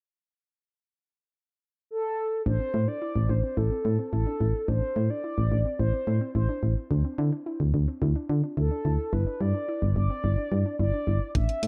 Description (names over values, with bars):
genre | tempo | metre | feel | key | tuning
synth-pop | 108 BPM | 4/4 | straight | A minor | A4 = 441 Hz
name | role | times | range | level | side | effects
mellow horn-like synth lead | melody | 1.9-11.7 s | A4 to E5 | -34 LUFS | equal | chorus, analog delay
soft round pluck | arpeggios | 2.5-11.7 s | C4 to F4 | -38 LUFS | equal | chorus, analog delay
solid FM bass | bass | 2.5-11.7 s | G1 to D3 | -27 LUFS | equal | none
detuned 8-bit digital drum machine | drums | 11.3-11.7 s | hi-hat, kick drum | -28 LUFS | equal | none
room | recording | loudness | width
light reverb | echo-heavy mix | -27 LUFS | mono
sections
0.2-2.5 A section; 2.5-11.7 B section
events
none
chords
0.2 N.C.; 2.5 Am; 6.9 D7(no3); 9.1 G5